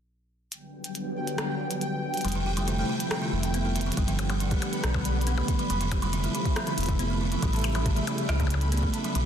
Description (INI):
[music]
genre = IDM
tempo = 139 BPM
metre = 4/4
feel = straight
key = unclear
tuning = A4 = 440 Hz
[part]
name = soft string machine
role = sustained chords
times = 0.5-9.3 s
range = C3 to F#5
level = -32 LUFS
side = left 1 dB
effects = ensemble chorus, vintage 12-bit sampler grit
[part]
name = glitchy drum kit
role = drums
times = 0.5-9.2 s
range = hi-hat, percussion blips, rim click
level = -34 LUFS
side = left 2 dB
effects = overdrive, studio ambience
[part]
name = pulsing gated texture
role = texture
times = 0.9-9.3 s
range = G5 to B5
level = -36 LUFS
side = equal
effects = chorus, built-in reverb
[part]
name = buzzing kalimba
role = arpeggios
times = 2.2-9.2 s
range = C#3 to G4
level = -31 LUFS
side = right 3 dB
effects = ping-pong delay
[part]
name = round analog bass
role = bass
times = 2.2-9.3 s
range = F1 to C#2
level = -28 LUFS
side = equal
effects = none
[part]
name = electronic kick drum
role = drums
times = 4.0-8.9 s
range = none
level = -29 LUFS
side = equal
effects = overdrive, studio ambience
[sound]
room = moderate echo chamber reverb, RT60 1.4 s, digital ambience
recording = dense, heavily limited modern master, faint mains hum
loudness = -25 LUFS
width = side -9 dB against mid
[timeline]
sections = 0.5-4.0 A section; 4.0-9.3 B section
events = filter sweep on string machine 0.5-4.0; drum fill 3.8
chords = 0.5 Gmaj7; 2.2 Fmaj7; 4.0 Gmaj7; 5.7 Fmaj7; 7.4 A7